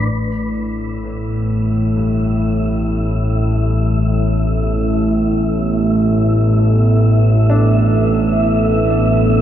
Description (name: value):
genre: dark ambient drone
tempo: free time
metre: none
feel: none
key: unclear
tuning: A4 = 438 Hz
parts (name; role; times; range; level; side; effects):
- analog drone; drone; 0.0-9.4 s; A1 to A2; -14 LUFS; equal; chorus
- wind-like tuned noise texture; texture; 0.0-9.4 s; D4 to E5; -26 LUFS; left 1 dB; built-in reverb
- dark analog pad; sustained chords; 2.8-9.4 s; B3 to E5; -23 LUFS; right 2 dB; chorus
- dark baby grand piano; arpeggios; 1.0-9.4 s; G2 to D4; -31 LUFS; left 1 dB; diffuse ambient delay
room: wet cathedral reverb, RT60 5.8 s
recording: in a vast, echoing space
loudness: -13 LUFS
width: side -11 dB against mid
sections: 0.1-9.4 A section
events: fade-in on analog synth pad 0.1-9.4; fade-in on synth texture 0.1-9.4; fade-in on grand piano 0.1-9.4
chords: 0.1 Asus2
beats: free time